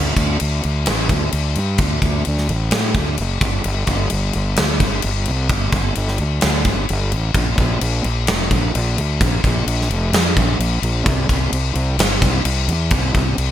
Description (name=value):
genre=hard rock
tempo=129 BPM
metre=4/4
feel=straight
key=unclear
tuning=A4 = 440 Hz
part: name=fuzz fingered electric bass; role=bass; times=0.0-13.5 s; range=F1 to A2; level=-19 LUFS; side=equal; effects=overdrive
part: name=gated 80s drum kit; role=drums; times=0.2-13.5 s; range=crash cymbal, kick drum, snare drum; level=-19 LUFS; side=equal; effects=gated reverb
room=little or no reverb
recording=bright 1980s-style digital production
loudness=-16 LUFS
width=side -11 dB against mid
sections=0.0-13.5 A section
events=none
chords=none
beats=0.41 0.87 1.33 | 1.80 2.26 2.73 3.19 | 3.65 4.12 4.58 5.04 | 5.51 5.97 6.43 6.90 | 7.36 7.83 8.29 8.75 | 9.22 9.68 10.15 10.61 | 11.07 11.54 12.00 12.46 | 12.93 13.39